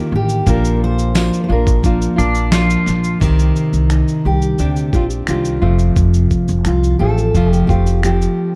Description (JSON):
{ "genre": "acoustic pop", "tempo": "87 BPM", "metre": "4/4", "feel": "straight", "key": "unclear", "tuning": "A4 = 438 Hz", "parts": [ { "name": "fingerpicked steel-string acoustic guitar", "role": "melody", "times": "0.0-8.5 s", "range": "Eb4 to C5", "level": "-25 LUFS", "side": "equal", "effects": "none" }, { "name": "nylon-string guitar", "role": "accompaniment", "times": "0.0-8.6 s", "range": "F2 to G4", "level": "-20 LUFS", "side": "equal", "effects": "none" }, { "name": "upright bass", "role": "bass", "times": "0.1-8.3 s", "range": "F1 to D2", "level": "-19 LUFS", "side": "equal", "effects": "none" }, { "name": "dusty soul sampler-style drum kit", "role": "drums", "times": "0.3-8.4 s", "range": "finger snaps, kick drum, shaker, snare drum", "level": "-22 LUFS", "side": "equal", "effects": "none" }, { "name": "tambourine", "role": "percussion", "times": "1.1-2.7 s", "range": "none", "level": "-37 LUFS", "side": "equal", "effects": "none" }, { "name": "pedal steel guitar", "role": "second line", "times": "2.2-3.2 s", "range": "D4 to F4", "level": "-24 LUFS", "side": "equal", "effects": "none" } ], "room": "light reverb", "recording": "dark, warm production", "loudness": "-15 LUFS", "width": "mono", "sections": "0.0-3.2 A section; 3.2-8.6 B section", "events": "none", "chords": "0.5 Bb; 3.2 Cmadd9; 5.6 F" }